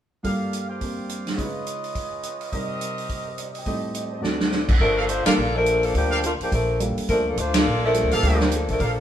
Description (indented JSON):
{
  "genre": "jazz, big band swing",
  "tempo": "210 BPM",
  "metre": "4/4",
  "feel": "swing 60% on 8ths",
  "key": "G minor",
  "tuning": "A4 = 439 Hz",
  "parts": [
    { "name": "dark baby grand piano", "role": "accompaniment", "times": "0.2-8.4 s", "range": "D2 to G5", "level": "-30 LUFS", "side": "right 1 dB", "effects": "none" },
    { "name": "clear trumpet section", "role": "stabs", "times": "0.2-8.9 s", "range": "E#4 to A5", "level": "-30 LUFS", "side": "right 2 dB", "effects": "none" },
    { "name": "swinging big-band drum kit", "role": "drums", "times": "0.2-8.9 s", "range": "crash cymbal, hi-hat, kick drum, ride cymbal, snare drum", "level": "-25 LUFS", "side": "equal", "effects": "none" },
    { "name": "warm saxophone section", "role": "melody", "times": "4.8-9.0 s", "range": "F3 to D5", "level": "-22 LUFS", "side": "left 1 dB", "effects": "none" },
    { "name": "upright bass", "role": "bass", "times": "4.8-9.0 s", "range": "G1 to D2", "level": "-25 LUFS", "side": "equal", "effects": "none" }
  ],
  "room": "moderate stone room reverb, RT60 1.0 s",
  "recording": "band playing live in one room",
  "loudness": "-21 LUFS",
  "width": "side -10 dB against mid",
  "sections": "0.2-4.8 A section; 4.8-9.0 B section",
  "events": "drum fill 4.2; band accent 5.2, 7.5",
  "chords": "0.2 Gm7; 1.4 C#9; 2.5 Cm7; 3.7 Am7b5; 4.2 D7; 4.8 Gm9"
}